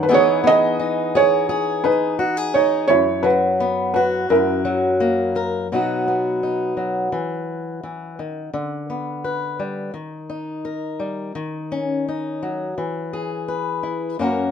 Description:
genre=acoustic folk-pop ballad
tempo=85 BPM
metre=4/4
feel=straight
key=unclear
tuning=A4 = 441 Hz
part: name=felt-muted upright piano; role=melody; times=0.0-5.7 s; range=E4 to D#5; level=-17 LUFS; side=right 3 dB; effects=none
part: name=fingerpicked swing-style acoustic guitar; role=accompaniment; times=0.0-14.5 s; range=F#2 to B4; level=-21 LUFS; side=left 2 dB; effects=none
room=moderate studio reverb, RT60 0.8 s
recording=minimal, uncompressed stereo recording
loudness=-18 LUFS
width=side -7 dB against mid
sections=0.0-5.7 A section; 5.7-14.5 B section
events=none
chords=0.1 Emaj7; 2.9 F#7sus4; 4.3 F#7; 5.7 B; 7.1 Esus2; 8.5 G/D; 9.9 D#; 11.4 D#m7; 12.8 E

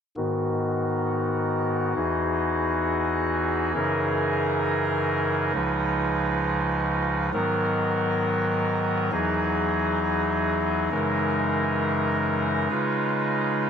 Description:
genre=hip hop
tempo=free time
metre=none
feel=none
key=G# minor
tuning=A4 = 440 Hz
part: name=chamber organ, soft reed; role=solo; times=0.2-13.7 s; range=C#2 to B4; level=-22 LUFS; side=equal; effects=low-pass filter, tape echo
room=moderate shimmer reverb, RT60 4.1 s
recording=none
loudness=-22 LUFS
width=side -7 dB against mid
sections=0.2-7.3 A section; 7.3-13.7 B section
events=filter sweep on pipe organ 0.2-7.3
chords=0.2 G#m7; 2.0 Emaj7; 3.7 F#13; 5.5 C#7; 7.3 G#m7; 9.1 Emaj7; 10.9 F#13; 12.7 C#7

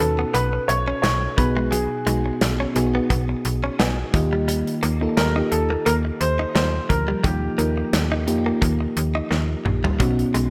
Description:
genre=1980s-style pop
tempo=87 BPM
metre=4/4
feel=swing 55% on 16ths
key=unclear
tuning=A4 = 440 Hz
part: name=warm baby grand piano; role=melody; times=0.0-8.6 s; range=G4 to C#5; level=-27 LUFS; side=equal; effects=none
part: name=mellow FM electric piano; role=accompaniment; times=0.0-10.5 s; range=B2 to G#5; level=-27 LUFS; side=equal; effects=chorus
part: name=direct-recorded clean electric guitar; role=riff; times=0.0-10.5 s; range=F#3 to D#4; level=-31 LUFS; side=equal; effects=lush chorus, delay
part: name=slap-like FM bass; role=bass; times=0.0-10.5 s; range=A#1 to E#2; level=-26 LUFS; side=equal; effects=none
part: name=modern studio drum kit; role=drums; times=0.0-10.5 s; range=hi-hat, kick drum, snare drum, toms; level=-27 LUFS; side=equal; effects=gated reverb
room=light reverb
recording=none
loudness=-21 LUFS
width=mono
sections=0.0-10.5 A section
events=FM electric piano fill 3.4-4.5; drum fill 9.3-10.0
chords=0.0 Badd9; 1.4 G#m7/B; 4.1 D#add9

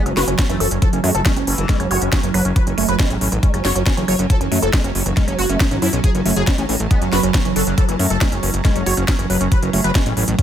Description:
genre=psychedelic trance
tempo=138 BPM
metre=4/4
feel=straight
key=F# minor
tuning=A4 = 439 Hz
part: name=metallic wobble bass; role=second line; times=0.0-1.9, 6.9-8.0 s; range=E3 to B3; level=-34 LUFS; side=left 5 dB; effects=chorus, sidechain pumping, high-pass filter, dub echo
part: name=evolving wavetable pad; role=sustained chords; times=0.3-10.4 s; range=F#3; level=-25 LUFS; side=right 4 dB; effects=chorus, built-in reverb, sidechain pumping
part: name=woody wave-folded pluck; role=riff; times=0.0-10.4 s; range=E3 to F#4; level=-24 LUFS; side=moving between left 2 dB and right 4 dB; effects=chorus, auto-pan, sidechain pumping, digital delay
part: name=wide unison lead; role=melody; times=0.1-10.4 s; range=C#4 to C#5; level=-24 LUFS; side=left 1 dB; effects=phaser, sidechain pumping, digital delay
part: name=fat analog bass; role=bass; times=0.1-10.4 s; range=F#1 to F#2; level=-21 LUFS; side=equal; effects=none
part: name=techno drum kit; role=drums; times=0.1-10.4 s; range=hi-hat, snare drum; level=-23 LUFS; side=equal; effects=none
part: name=electronic kick drum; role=drums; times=0.4-10.4 s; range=none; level=-16 LUFS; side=equal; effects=none
part: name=zap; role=sound effects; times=1.9-2.0 s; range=none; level=-31 LUFS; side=left 1 dB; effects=none
room=digital ambience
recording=none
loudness=-15 LUFS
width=side -10 dB against mid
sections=0.0-10.4 A section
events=none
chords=0.0 F#5

